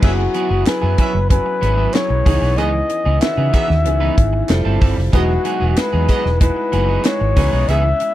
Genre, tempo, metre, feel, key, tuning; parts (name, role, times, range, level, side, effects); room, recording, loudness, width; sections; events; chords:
polished 1980s jazz-funk pop; 94 BPM; 4/4; straight; A4 = 440 Hz
breathy flugelhorn; melody; 0.0-8.1 s; F#4 to E5; -20 LUFS; left 3 dB
warm horn section; second line; 0.0-7.8 s; B3 to E5; -28 LUFS; right 2 dB
bright grand piano; accompaniment; 0.0-8.1 s; D#3 to B4; -23 LUFS; equal; wide subtle chorus
electric guitar at the edge of break-up; riff; 0.0-8.1 s; E3 to B4; -25 LUFS; right 7 dB; analog chorus
vintage muted fingered electric bass; bass; 0.0-7.9 s; E1 to C#3; -17 LUFS; equal
tight funk drum kit; drums; 0.0-8.1 s; crash cymbal, hi-hat, kick drum, snare drum; -16 LUFS; equal
group handclap; percussion; 0.7-7.2 s; -33 LUFS; right 7 dB
small room ambience; dry, close 1970s-style studio recording; -14 LUFS; side -14 dB against mid
0.0-8.1 A section
0.0 F#9sus4; 2.3 C#m9; 4.5 Fmaj9; 5.1 Emaj9; 7.4 C#m9